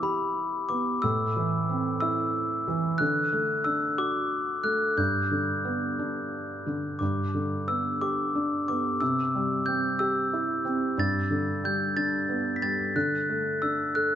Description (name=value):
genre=children's music, lullaby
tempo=60 BPM (dotted quarters)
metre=6/8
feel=straight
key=G major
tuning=A4 = 440 Hz
part: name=glockenspiel with rubber mallets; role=melody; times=0.0-14.2 s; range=B5 to B6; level=-28 LUFS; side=left 1 dB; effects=none
part: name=felt-muted upright piano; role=accompaniment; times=0.0-14.2 s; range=G2 to A4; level=-28 LUFS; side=right 1 dB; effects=none
room=moderate concert hall reverb, RT60 2.1 s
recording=nothing above 7.8 kHz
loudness=-25 LUFS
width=side -10 dB against mid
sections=0.0-7.0 A section; 7.0-14.2 B section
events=none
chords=0.0 Em; 1.0 Am; 3.0 D; 5.0 G; 9.0 C; 11.0 Gadd9; 13.0 D